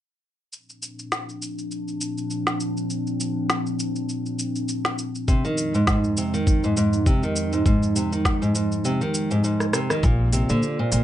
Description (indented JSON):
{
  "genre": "folktronica",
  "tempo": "101 BPM",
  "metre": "4/4",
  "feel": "swing 56% on 16ths",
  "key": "Bb mixolydian",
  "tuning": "A4 = 440 Hz",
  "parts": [
    { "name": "warbly tape-like pad", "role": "sustained chords", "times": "1.0-11.0 s", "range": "F2 to D5", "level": "-27 LUFS", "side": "equal", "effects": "chorus, built-in reverb" },
    { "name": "organic electronic drum kit", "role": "drums", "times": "0.5-11.0 s", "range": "hi-hat, rim click, shaker, snare drum", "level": "-27 LUFS", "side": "equal", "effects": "none" },
    { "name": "picked steel-string acoustic guitar", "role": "arpeggios", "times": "5.3-11.0 s", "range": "Ab2 to Eb3", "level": "-22 LUFS", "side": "equal", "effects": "vintage 12-bit sampler grit, tape echo" },
    { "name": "electronic kick drum", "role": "drums", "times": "5.3-10.2 s", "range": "none", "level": "-20 LUFS", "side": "equal", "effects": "none" },
    { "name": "upright bass", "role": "bass", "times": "10.0-11.0 s", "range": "Bb1 to Bb2", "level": "-22 LUFS", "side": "equal", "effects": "none" }
  ],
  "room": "moderate studio reverb, RT60 0.5 s",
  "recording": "nothing above 10.3 kHz",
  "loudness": "-21 LUFS",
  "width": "side -12 dB against mid",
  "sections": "0.5-10.0 A section; 10.0-11.0 B section",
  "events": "kick drops out 8.8-10.0; drum fill 9.6-10.0",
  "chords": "0.5 Bbadd9; 5.3 Fm7; 10.0 Bbadd9"
}